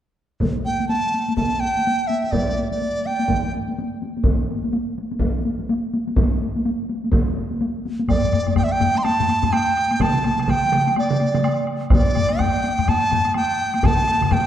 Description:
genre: japanese traditional, taiko drum ensemble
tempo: 125 BPM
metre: 4/4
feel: swing 60% on 16ths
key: unclear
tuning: A4 = 439 Hz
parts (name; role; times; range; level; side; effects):
- taiko ensemble; percussion; 0.4-14.4 s; none; -24 LUFS; left 2 dB; none
- taiko ensemble; percussion; 0.4-14.4 s; none; -22 LUFS; right 1 dB; none
- mellow dizi; melody; 0.7-3.5, 8.1-14.5 s; D5 to C6; -21 LUFS; right 2 dB; none
- taiko ensemble; percussion; 8.1-14.4 s; none; -24 LUFS; left 5 dB; none
- woodblock; percussion; 8.1-14.4 s; none; -33 LUFS; right 2 dB; none
- taiko ensemble; percussion; 10.0-14.4 s; none; -24 LUFS; right 2 dB; none
room: wet concert hall reverb, RT60 1.9 s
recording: dark, warm production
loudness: -18 LUFS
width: side -10 dB against mid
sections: 0.4-8.1 A section; 8.1-14.5 B section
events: none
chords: none

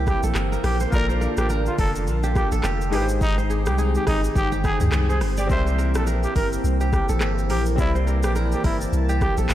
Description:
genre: afrobeats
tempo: 105 BPM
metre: 4/4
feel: swing 58% on 16ths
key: C mixolydian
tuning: A4 = 440 Hz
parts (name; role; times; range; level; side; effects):
- clear grand piano; accompaniment; 0.0-9.5 s; Ab3 to E5; -32 LUFS; left 4 dB; none
- lush unison pad; sustained chords; 0.0-9.5 s; D3 to A5; -28 LUFS; left 1 dB; chorus, sidechain pumping
- kora; riff; 0.0-9.5 s; G4 to D5; -30 LUFS; right 3 dB; diffuse ambient delay
- punchy sub bass; bass; 0.0-9.5 s; F1 to D2; -23 LUFS; equal; none
- growling trumpet; melody; 0.1-9.4 s; Eb4 to C5; -28 LUFS; equal; diffuse ambient delay
- afro-pop drum kit; drums; 0.1-9.5 s; handclaps, hi-hat, kick drum, rim click, shaker, toms; -26 LUFS; equal; overdrive
room: light reverb, digital ambience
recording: none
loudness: -19 LUFS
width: side -13 dB against mid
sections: 0.0-9.5 A section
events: none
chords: 0.0 C7; 0.9 Bbmaj7; 2.9 Abmaj7; 5.5 C7

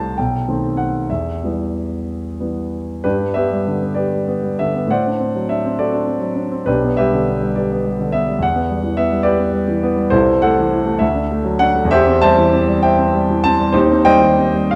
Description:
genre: classical, romantic character piece for solo piano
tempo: 59-72 BPM (dotted quarters)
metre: 6/8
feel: rubato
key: E minor, G major from 3.0 s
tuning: A4 = 441 Hz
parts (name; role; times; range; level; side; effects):
- warm concert grand piano; solo; 0.0-14.8 s; B1 to A5; -17 LUFS; equal; none
room: moderate scoring stage reverb, RT60 1.6 s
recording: dark, warm production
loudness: -17 LUFS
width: mono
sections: 0.0-3.0 A section; 3.0-14.8 B section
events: none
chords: 0.2 B7b9; 1.1 Em; 3.0 G; 4.9 D7/A; 6.7 G/B; 8.4 Em7; 10.1 Am/C; 11.0 D; 11.9 C/E; 13.7 Cm/Eb

